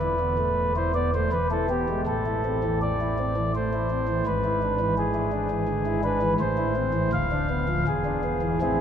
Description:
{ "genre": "classical, chorale-style piece for pipe organ", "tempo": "83 BPM", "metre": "3/4", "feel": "uneven beats", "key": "unclear", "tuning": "A4 = 440 Hz", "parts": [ { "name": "chamber organ, principal", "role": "solo", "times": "0.0-8.8 s", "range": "D1 to F5", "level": "-23 LUFS", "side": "equal", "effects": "none" } ], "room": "wet cathedral reverb, RT60 6.8 s", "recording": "none", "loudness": "-23 LUFS", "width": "side -8 dB against mid", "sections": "0.0-8.8 A section", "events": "none", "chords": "0.0 Esus4; 1.3 E; 2.1 Am; 4.3 E7/G#; 6.4 Am; 7.1 Bdim/D; 7.9 E7" }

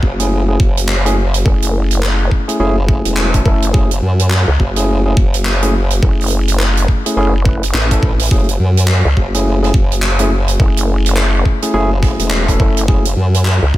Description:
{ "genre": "glitch hop", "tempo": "105 BPM", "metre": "4/4", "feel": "swing 60% on 16ths", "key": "F# minor", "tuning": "A4 = 441 Hz", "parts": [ { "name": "formant-sweep wobble bass", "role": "bass", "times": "0.0-13.8 s", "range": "E1 to F#2", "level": "-14 LUFS", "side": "equal", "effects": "chorus" }, { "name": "electronic kick drum", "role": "drums", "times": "0.0-13.8 s", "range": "none", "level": "-13 LUFS", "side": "equal", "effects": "small room ambience" }, { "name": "tine electric piano", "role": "stabs", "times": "0.2-13.0 s", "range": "A3 to B4", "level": "-19 LUFS", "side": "left 1 dB", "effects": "sidechain pumping, low-pass filter, dub echo" }, { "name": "soft-mallet drum kit", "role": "drums", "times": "0.2-13.6 s", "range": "handclaps, hi-hat, snare drum", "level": "-20 LUFS", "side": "right 1 dB", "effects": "small room ambience" }, { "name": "vowel-sweep wobble bass", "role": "bass", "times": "1.5-13.7 s", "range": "F#1 to C#2", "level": "-15 LUFS", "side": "equal", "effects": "chorus" } ], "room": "little or no reverb", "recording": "none", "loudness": "-11 LUFS", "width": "side -15 dB against mid", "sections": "0.0-13.8 A section", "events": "filter sweep on tine electric piano 0.0-13.8", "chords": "0.0 F#m7" }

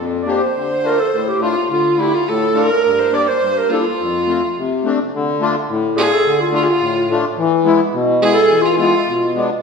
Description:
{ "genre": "klezmer", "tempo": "106 BPM", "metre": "2/4", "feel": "straight", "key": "F major, D dorian sharp4 from 5.1 s", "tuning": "A4 = 440 Hz", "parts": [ { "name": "accordion", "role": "accompaniment", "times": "0.0-9.5 s", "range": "F2 to A4", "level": "-18 LUFS", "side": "left 3 dB", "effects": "light tremolo tuning" }, { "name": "mellow clarinet", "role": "melody", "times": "0.2-9.3 s", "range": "E4 to D5", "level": "-17 LUFS", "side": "right 1 dB", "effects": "none" }, { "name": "rich violin", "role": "second line", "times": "0.3-9.3 s", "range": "E4 to D5", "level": "-21 LUFS", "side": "right 1 dB", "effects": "none" } ], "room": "wet recital hall reverb, RT60 1.6 s", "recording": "heard from further back in the room", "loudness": "-14 LUFS", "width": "side -5 dB against mid", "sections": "0.0-5.1 A section; 5.1-9.6 B section", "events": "none", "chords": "0.0 Bb; 0.6 Dm; 2.8 Gm; 4.0 F; 5.1 Dm; 7.4 E" }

